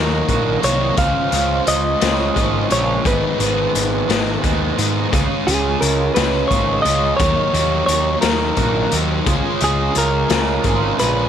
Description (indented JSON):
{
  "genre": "indie rock",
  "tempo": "58 BPM (dotted quarters)",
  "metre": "6/8",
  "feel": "straight",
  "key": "Db mixolydian",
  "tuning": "A4 = 439 Hz",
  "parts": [
    { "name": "clean electric guitar", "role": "melody", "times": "0.0-11.3 s", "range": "Ab4 to F5", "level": "-20 LUFS", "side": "right 1 dB", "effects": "none" },
    { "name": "overdriven semi-hollow guitar", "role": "riff", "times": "0.0-11.3 s", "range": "Ab2 to Bb4", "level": "-23 LUFS", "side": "right 12 dB", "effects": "lush chorus, tape echo" },
    { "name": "sludgy distorted guitar", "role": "riff", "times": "0.0-11.3 s", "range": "Ab2 to F4", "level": "-23 LUFS", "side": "left 11 dB", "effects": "overdrive" },
    { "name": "fuzz picked electric bass", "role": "bass", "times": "0.0-11.3 s", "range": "Ab1 to Ab2", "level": "-22 LUFS", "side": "right 1 dB", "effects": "overdrive" },
    { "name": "raw garage drum kit", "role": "drums", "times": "0.3-11.1 s", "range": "hi-hat, kick drum, snare drum", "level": "-22 LUFS", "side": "left 3 dB", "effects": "none" }
  ],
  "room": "light reverb, studio ambience",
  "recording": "1960s-style stereo with parts hard left and right",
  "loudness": "-15 LUFS",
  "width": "side -9 dB against mid",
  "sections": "0.0-11.3 A section",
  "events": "none",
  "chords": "0.0 Ebm7; 1.0 Db; 3.0 Abm; 5.1 Db; 7.2 Ebm7; 9.3 Db"
}